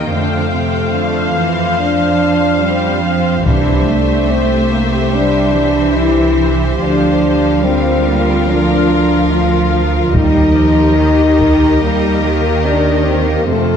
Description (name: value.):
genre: cinematic, epic orchestral film score.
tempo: 72 BPM.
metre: 4/4.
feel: straight.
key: unclear.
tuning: A4 = 440 Hz.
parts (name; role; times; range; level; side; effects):
warm symphonic violin section; melody; 0.0-13.8 s; C5 to G5; -25 LUFS; left 2 dB; none.
clear symphonic violin section; second line; 0.0-13.8 s; A4 to C5; -23 LUFS; left 2 dB; none.
rich symphonic viola section; accompaniment; 0.0-13.8 s; F4 to F5; -21 LUFS; left 2 dB; none.
warm French horn section; sustained chords; 0.0-13.8 s; A3 to F4; -15 LUFS; left 2 dB; none.
clear chamber double bass section; bass; 0.0-13.8 s; C2 to F2; -17 LUFS; right 3 dB; none.
rich symphonic cello section; bass; 0.0-13.8 s; C3 to A3; -19 LUFS; right 2 dB; none.
taiko ensemble; drums; 3.5-5.1, 10.1-11.8 s; none; -18 LUFS; equal; none.
timpani; percussion; 3.5-4.7 s; C3; -23 LUFS; right 1 dB; none.
room: wet scoring stage reverb, RT60 1.9 s.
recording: dark, warm production.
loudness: -11 LUFS.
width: side -7 dB against mid.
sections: 0.0-13.8 A section.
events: none.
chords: 0.1 F; 3.5 Cadd9; 6.8 Bb/D; 10.1 Eb.